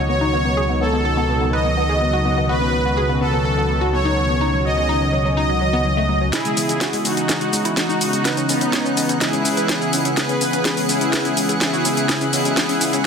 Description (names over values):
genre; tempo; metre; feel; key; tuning
progressive house; 125 BPM; 4/4; straight; C# minor; A4 = 440 Hz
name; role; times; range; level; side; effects
warm analog pad; sustained chords; 0.0-13.1 s; B2 to F#4; -24 LUFS; right 1 dB; chorus
glassy wavetable pluck; arpeggios; 0.0-13.0 s; F#3 to D#5; -24 LUFS; left 3 dB; chorus, dub echo
dark detuned saw bass; bass; 0.0-13.0 s; B1 to C#2; -23 LUFS; equal; high-pass filter
soft supersaw; melody; 0.1-13.0 s; B3 to D#5; -21 LUFS; equal; tape echo
house drum kit; drums; 6.3-13.0 s; hi-hat, shaker, snare drum; -21 LUFS; equal; overdrive
drifting glass-harmonics texture; texture; 7.0-13.1 s; F#5 to F#6; -30 LUFS; right 3 dB; chorus, built-in reverb
room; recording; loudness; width
light reverb, digital ambience; dense, heavily limited modern master; -16 LUFS; side -6 dB against mid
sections
0.0-6.3 A section; 6.3-13.1 B section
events
build-up 6.3-13.1; drum fill 6.3-13.1; filter sweep on analog synth pad 6.3-13.1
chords
0.0 B/C#; 6.3 C#m7